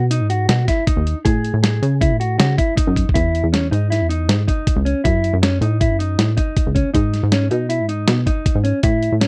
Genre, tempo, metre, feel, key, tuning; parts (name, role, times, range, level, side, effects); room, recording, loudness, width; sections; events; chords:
progressive instrumental, band music in an uneven meter; 158 BPM; 5/4; straight; A4 = 440 Hz
mellow electric guitar; arpeggios; 0.0-9.3 s; C#4 to G#4; -24 LUFS; equal
plucky analog bass; bass; 0.0-9.3 s; C#2 to C#3; -20 LUFS; equal
dusty soul sampler-style drum kit; drums; 0.1-9.3 s; hi-hat, kick drum, snare drum; -21 LUFS; equal
little or no reverb; dry, close 1970s-style studio recording; -18 LUFS; mono
0.0-3.2 A section; 3.2-9.3 B section
drum fill 3.0
0.0 G#m7; 1.3 Amaj7; 3.2 Emaj7; 5.1 F#m7; 6.9 G#m